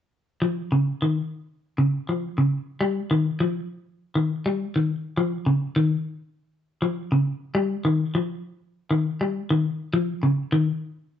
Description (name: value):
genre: afrobeat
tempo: 101 BPM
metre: 4/4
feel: swing 55% on 16ths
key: unclear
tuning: A4 = 439 Hz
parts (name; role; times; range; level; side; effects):
- semi-hollow electric guitar; arpeggios; 0.4-10.7 s; Db3 to G3; -22 LUFS; left 1 dB; none
room: moderate large studio reverb, RT60 0.8 s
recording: nothing above 8.0 kHz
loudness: -22 LUFS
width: side -10 dB against mid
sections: 0.4-9.9 A section; 9.9-11.2 B section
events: none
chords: none